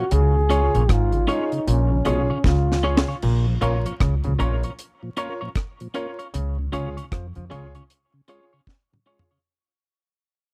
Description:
roots reggae; 77 BPM; 4/4; swing 62% on 16ths; Db major; A4 = 442 Hz
breathy trombone; melody; 0.0-3.1 s; Db4 to Ab4; -28 LUFS; equal; dub echo
clean electric guitar; accompaniment; 0.0-9.4 s; Db4 to Db5; -32 LUFS; equal; tremolo, dub echo
mellow tonewheel organ; accompaniment; 0.0-9.4 s; Bb2 to F4; -35 LUFS; equal; overdrive, chorus vibrato, slow rotary speaker
overdriven clav; riff; 0.1-7.7 s; Ab2 to F3; -29 LUFS; equal
upright bass; bass; 0.1-7.7 s; Ab1 to F2; -24 LUFS; equal
deep reggae drum kit; drums; 0.1-9.4 s; crash cymbal, hi-hat, kick drum, rim click, snare drum, toms; -25 LUFS; equal
warm concert grand piano; stabs; 0.5-9.3 s; F4 to Db5; -32 LUFS; equal
small room reverb; dry, close 1970s-style studio recording, vinyl crackle; -22 LUFS; mono
0.0-3.2 A section; 3.2-9.5 B section
drum fill 2.4-3.2, 8.7-9.5; fade-out 3.2-9.5
0.1 Db; 3.2 Bbm; 6.3 Db

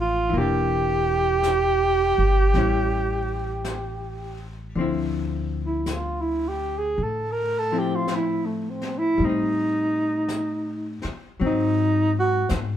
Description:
jazz ballad; 54 BPM; 4/4; swing 67% on 8ths; D minor; A4 = 440 Hz
breathy alto saxophone; melody; 0.0-12.5 s; A3 to Bb4; -23 LUFS; right 2 dB
archtop guitar, miked and amplified; accompaniment; 0.0-12.8 s; D3 to G4; -29 LUFS; left 4 dB
upright bass; bass; 0.0-12.8 s; E1 to A2; -27 LUFS; left 1 dB
jazz brush drum kit; drums; 0.3-12.8 s; brushed snare drum, hi-hat, snare drum; -38 LUFS; left 3 dB
moderate large studio reverb, RT60 1.1 s; band playing live in one room; -21 LUFS; side -10 dB against mid
0.0-4.8 A section; 4.8-12.8 B section
alto saxophone solo 4.8-12.8
0.3 Em7b5; 2.5 A7; 4.8 Dm9; 9.2 Am7b5; 11.4 G#7

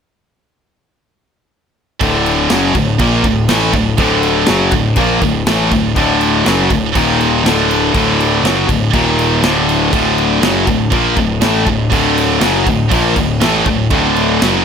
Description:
heavy metal; 121 BPM; 4/4; straight; A4 = 440 Hz
crunchy overdriven guitar; riff; 2.0-14.6 s; D2 to Bb3; -19 LUFS; equal
heavy high-gain guitar; riff; 2.0-14.6 s; D2 to Bb3; -16 LUFS; right 13 dB; distortion
high-gain distorted guitar; riff; 2.0-14.6 s; D2 to Bb3; -16 LUFS; left 8 dB; distortion
fuzz picked electric bass; bass; 2.0-14.6 s; D1 to Bb1; -19 LUFS; right 1 dB; overdrive
modern studio drum kit; drums; 2.0-14.5 s; crash cymbal, kick drum, snare drum; -19 LUFS; right 1 dB
little or no reverb; -11 LUFS; side -7 dB against mid
2.0-14.6 A section
2.0 D; 7.0 Eb5; 7.4 D; 8.9 Eb5; 9.4 D

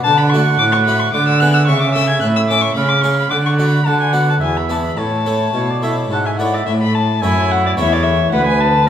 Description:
classical, baroque-style sonata movement with continuo; 109 BPM; 3/4; straight; A major; A4 = 440 Hz
dark violin; melody; 0.0-8.9 s; D5 to G#6; -18 LUFS; left 6 dB
clear oboe; second line; 0.0-8.9 s; E4 to F#5; -19 LUFS; right 5 dB
rich cello; bass; 0.0-8.9 s; D2 to D3; -17 LUFS; right 1 dB
harpsichord; accompaniment; 0.1-8.8 s; D2 to E#5; -20 LUFS; left 1 dB
wet recital hall reverb, RT60 1.6 s; -13 LUFS; side -9 dB against mid
0.0-6.7 A section; 6.7-8.9 B section
0.1 D; 1.1 E7/D; 1.7 A/C#; 2.8 C#; 3.3 D; 3.9 Bm/D; 4.4 E5; 5.0 A; 8.3 D

